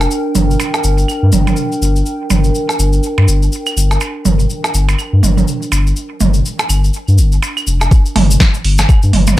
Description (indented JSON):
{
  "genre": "minimal techno",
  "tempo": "123 BPM",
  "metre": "4/4",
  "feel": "swing 59% on 16ths",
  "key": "G minor",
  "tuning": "A4 = 440 Hz",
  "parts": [
    { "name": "saturated sub bass", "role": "bass", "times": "0.0-9.3 s", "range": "F1 to G2", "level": "-12 LUFS", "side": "left 1 dB", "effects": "sidechain pumping" },
    { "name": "cabasa", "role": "percussion", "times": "0.0-9.4 s", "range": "none", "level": "-24 LUFS", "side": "left 3 dB", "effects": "none" },
    { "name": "electronic percussion blips, toms and claves", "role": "percussion", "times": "0.0-9.4 s", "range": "none", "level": "-17 LUFS", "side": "right 4 dB", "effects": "none" },
    { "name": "warbly tape-like pad", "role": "texture", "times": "0.0-7.9 s", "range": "D4 to G5", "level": "-22 LUFS", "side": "right 1 dB", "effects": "chorus, built-in reverb, sidechain pumping" },
    { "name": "electronic kick drum", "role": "drums", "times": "7.9-9.0 s", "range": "none", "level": "-9 LUFS", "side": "equal", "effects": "none" },
    { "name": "punchy analog drum machine", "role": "drums", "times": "8.2-9.2 s", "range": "hi-hat, snare drum", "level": "-17 LUFS", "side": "equal", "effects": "none" }
  ],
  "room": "light reverb",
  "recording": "none",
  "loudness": "-11 LUFS",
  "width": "side -15 dB against mid",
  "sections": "0.0-7.9 A section; 7.9-9.4 B section",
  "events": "drop 7.9-9.4",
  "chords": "0.0 Gm; 7.9 N.C."
}